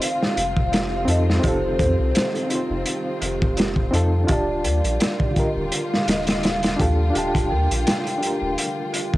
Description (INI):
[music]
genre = trip hop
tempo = 84 BPM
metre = 4/4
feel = swing 55% on 16ths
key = unclear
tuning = A4 = 440 Hz
[part]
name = pure breathy sine lead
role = melody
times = 0.0-9.2 s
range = C5 to G5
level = -27 LUFS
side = equal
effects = analog chorus, cassette tape, tape echo
[part]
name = reed electric piano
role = accompaniment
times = 0.0-9.2 s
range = D3 to A5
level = -26 LUFS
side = equal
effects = tremolo, vintage 12-bit sampler grit, cassette tape
[part]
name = rich studio string section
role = sustained chords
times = 0.0-9.2 s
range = D3 to F4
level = -31 LUFS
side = left 1 dB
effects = cassette tape
[part]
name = dark detuned synth bell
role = arpeggios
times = 0.0-9.2 s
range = F4 to Bb4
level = -34 LUFS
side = right 9 dB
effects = chorus, phaser, cassette tape, analog delay
[part]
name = crunchy breakbeat drum kit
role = drums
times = 0.0-9.2 s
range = hi-hat, kick drum, snare drum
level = -22 LUFS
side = equal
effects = cassette tape
[part]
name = wind-like tuned noise texture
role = texture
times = 0.0-9.2 s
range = G3 to G4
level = -35 LUFS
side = left 2 dB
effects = built-in reverb, cassette tape
[part]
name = soft dub sub bass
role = bass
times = 0.4-9.2 s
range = Eb1 to F2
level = -23 LUFS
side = equal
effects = none
[sound]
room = light reverb, studio reverb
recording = home recording on cassette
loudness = -19 LUFS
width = side -17 dB against mid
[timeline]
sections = 0.0-9.2 A section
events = none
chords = 0.0 F7; 4.3 Ebmaj9#11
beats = 0.00 0.72 | 1.43 2.15 2.86 3.58 | 4.29 5.00 5.72 6.43 | 7.15 7.86 8.57